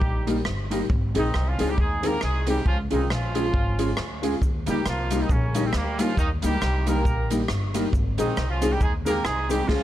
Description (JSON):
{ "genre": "ska", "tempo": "136 BPM", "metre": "4/4", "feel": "swing 58% on 8ths", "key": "unclear", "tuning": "A4 = 440 Hz", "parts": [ { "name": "clear horn section", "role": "melody", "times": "0.0-9.8 s", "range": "Db3 to Bb4", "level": "-28 LUFS", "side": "right 2 dB", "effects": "none" }, { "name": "upright bass", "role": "bass", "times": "0.0-9.8 s", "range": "G1 to Eb2", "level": "-27 LUFS", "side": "equal", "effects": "none" }, { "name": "swinging big-band drum kit", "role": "drums", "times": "0.0-9.8 s", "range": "crash cymbal, hi-hat, kick drum, rim click, snare drum", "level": "-27 LUFS", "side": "equal", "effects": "none" }, { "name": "mellow electric guitar", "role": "accompaniment", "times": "0.3-9.8 s", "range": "Bb3 to Ab4", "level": "-28 LUFS", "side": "right 3 dB", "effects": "none" }, { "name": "dark upright piano", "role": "stabs", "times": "0.3-9.8 s", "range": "G3 to Ab4", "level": "-30 LUFS", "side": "left 6 dB", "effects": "analog delay" }, { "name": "cabasa", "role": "percussion", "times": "4.4-9.6 s", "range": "none", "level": "-43 LUFS", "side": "left 5 dB", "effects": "none" } ], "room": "light reverb", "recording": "none", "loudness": "-21 LUFS", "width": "side -13 dB against mid", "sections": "0.0-9.8 A section", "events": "none", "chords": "0.0 Eb; 0.9 Ab; 2.7 Db; 4.4 Eb; 7.9 Ab" }